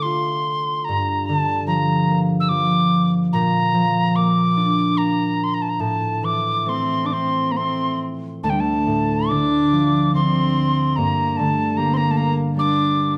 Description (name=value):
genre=celtic folk, Celtic slow air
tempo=66-76 BPM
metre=3/4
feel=rubato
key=D minor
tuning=A4 = 440 Hz
part: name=tin whistle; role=melody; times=0.0-13.1 s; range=G5 to E6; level=-24 LUFS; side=equal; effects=none
part: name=concert harp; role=accompaniment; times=0.0-13.2 s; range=D2 to A4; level=-23 LUFS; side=equal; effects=none
part: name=rich cello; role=second line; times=6.7-13.1 s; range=G3 to D4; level=-25 LUFS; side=equal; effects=none
room=wet recital hall reverb, RT60 1.5 s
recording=none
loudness=-20 LUFS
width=mono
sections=0.0-13.2 A section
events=none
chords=0.0 Dm7; 0.9 Gm7; 3.3 Bb; 5.8 Am; 8.4 Dm; 11.0 Gm